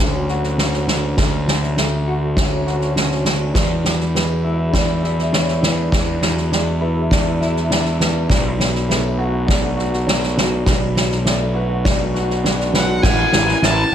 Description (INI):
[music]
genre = post-rock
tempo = 101 BPM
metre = 4/4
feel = straight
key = unclear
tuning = A4 = 439 Hz
[part]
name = electric guitar through a small old amp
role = arpeggios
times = 0.0-13.9 s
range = E2 to F#4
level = -24 LUFS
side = left 2 dB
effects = ensemble chorus, analog delay
[part]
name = fuzz picked electric bass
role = bass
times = 0.0-13.9 s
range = A1 to E2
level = -20 LUFS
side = equal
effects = overdrive
[part]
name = soft-mallet drum kit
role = drums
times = 0.3-13.8 s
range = crash cymbal, kick drum, snare drum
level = -19 LUFS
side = equal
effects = none
[part]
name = felt-muted upright piano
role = arpeggios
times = 3.6-13.9 s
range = B4 to F#5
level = -28 LUFS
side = right 3 dB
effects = analog chorus, analog delay
[part]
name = dark violin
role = melody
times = 12.8-13.9 s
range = F#5 to A5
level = -18 LUFS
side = left 1 dB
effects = none
[sound]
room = moderate plate reverb, RT60 1.6 s, studio ambience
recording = dreamy mix soaked in reverb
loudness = -15 LUFS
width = side -9 dB against mid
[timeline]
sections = 0.0-13.0 A section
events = none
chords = 0.0 Dmaj7; 3.6 E7; 8.3 Bm7; 13.0 A5